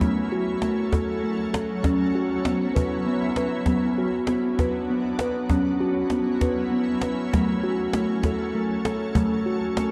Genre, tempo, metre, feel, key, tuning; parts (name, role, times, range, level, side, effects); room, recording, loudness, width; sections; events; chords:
world meditative, meditative tuned percussion; 98 BPM; 3/4; swing 54% on 16ths; F# minor; A4 = 441 Hz
shimmering ambient pad; sustained chords; 0.0-9.9 s; F#3 to A4; -33 LUFS; equal; chorus, built-in reverb, shimmer reverb
steel tongue drum; arpeggios; 0.0-9.9 s; F#3 to B4; -26 LUFS; equal; shimmer reverb
cajon; percussion; 0.0-9.9 s; -31 LUFS; equal
wet church reverb, RT60 3.1 s; dark, warm production; -24 LUFS; mono
0.0-9.9 A section
0.0 F#m; 1.8 C#m/F#; 3.7 Bm/F#; 5.5 C#m/F#; 7.3 F#m